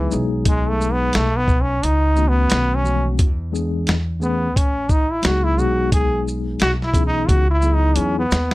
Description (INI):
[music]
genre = hip hop, jazz-hop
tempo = 88 BPM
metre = 4/4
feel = swing 58% on 16ths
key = unclear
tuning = A4 = 442 Hz
[part]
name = brilliant trombone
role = melody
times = 0.0-8.5 s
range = E3 to G#4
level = -20 LUFS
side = equal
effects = none
[part]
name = mellow tine electric piano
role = accompaniment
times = 0.0-8.2 s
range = D#3 to G#4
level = -24 LUFS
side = left 3 dB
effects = fast stereo tremolo
[part]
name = upright bass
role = bass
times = 0.0-8.5 s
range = A1 to E2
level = -21 LUFS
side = equal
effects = none
[part]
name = dusty soul sampler-style drum kit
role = drums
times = 0.1-8.5 s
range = hi-hat, kick drum, shaker, snare drum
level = -19 LUFS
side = equal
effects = none
[sound]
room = little or no reverb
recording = none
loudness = -16 LUFS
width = side -19 dB against mid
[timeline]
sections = 0.0-8.5 A section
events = trombone solo 0.0-8.5; drum fill 7.3-8.5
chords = 0.1 G#m7/B; 1.8 C#sus2; 2.5 B9; 3.2 E; 4.6 Amaj9; 5.6 G#m7/B; 7.3 C#m9; 8.0 Emaj9